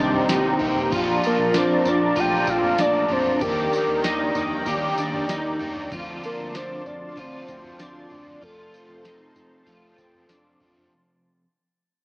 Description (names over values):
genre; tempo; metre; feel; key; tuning
dream pop; 96 BPM; 4/4; straight; unclear; A4 = 440 Hz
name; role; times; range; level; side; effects
crunchy overdriven guitar; accompaniment; 0.0-11.4 s; F2 to G4; -28 LUFS; equal; harmonic tremolo, wide subtle chorus
warm analog pad; sustained chords; 0.0-10.9 s; Eb3 to C6; -27 LUFS; equal; chorus
electric guitar at the edge of break-up; arpeggios; 0.0-10.9 s; C4 to G4; -27 LUFS; equal; ensemble chorus, digital delay
fat analog bass; bass; 0.0-10.9 s; Bb1 to F2; -33 LUFS; equal; none
booming analog drum machine; drums; 0.1-10.9 s; kick drum, snare drum, tambourine, toms; -32 LUFS; equal; none
glockenspiel with rubber mallets; texture; 1.2-11.2 s; G6 to Bb6; -36 LUFS; equal; none
soft octave-layered synth lead; melody; 1.3-10.3 s; A4 to G5; -24 LUFS; equal; chorus, phaser, digital delay
room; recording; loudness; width
moderate lush hall reverb, RT60 1.6 s, digital ambience; worn, warbling old tape, cassette tape, warbly pitch drift, small speaker sound; -20 LUFS; side -29 dB against mid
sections
0.0-10.9 A section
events
fade-out 0.0-10.9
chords
0.0 Cm7; 0.9 Bbmaj7; 3.4 Ebmaj7; 5.9 Dm7; 8.4 F